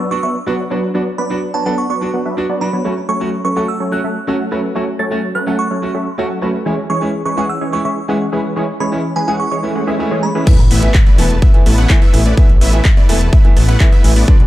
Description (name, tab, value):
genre	EDM, festival progressive house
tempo	126 BPM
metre	4/4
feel	straight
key	unclear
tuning	A4 = 440 Hz
part	supersaw stab	riff	0.0-14.4 s	E3 to A5	-19 LUFS	equal	sidechain pumping, low-pass filter, digital delay
part	glassy synth bell	melody	0.1-10.5 s	G#5 to A6	-22 LUFS	right 3 dB	chorus, tremolo, digital delay
part	clear concert grand piano	accompaniment	0.1-14.3 s	D3 to A4	-22 LUFS	right 1 dB	sidechain pumping, digital delay
part	swell and impact	sound effects	9.7-12.4 s	none	-21 LUFS	equal	none
part	electronic kick drum	drums	10.5-14.4 s	none	-9 LUFS	equal	none
part	pop drum kit	drums	10.5-14.5 s	crash cymbal, handclaps, hi-hat	-22 LUFS	equal	overdrive
part	detuned saw bass	bass	10.6-14.5 s	E1 to B1	-13 LUFS	equal	sidechain pumping
room	little or no reverb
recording	dark, warm production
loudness	-12 LUFS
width	side -15 dB against mid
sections	0.0-10.5 A section; 10.5-14.5 B section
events	swell 9.7-10.5; drop 10.5-14.5; impact 10.5-12.4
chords	0.0 Bm; 2.9 F#m; 6.7 C#m; 10.5 Asus2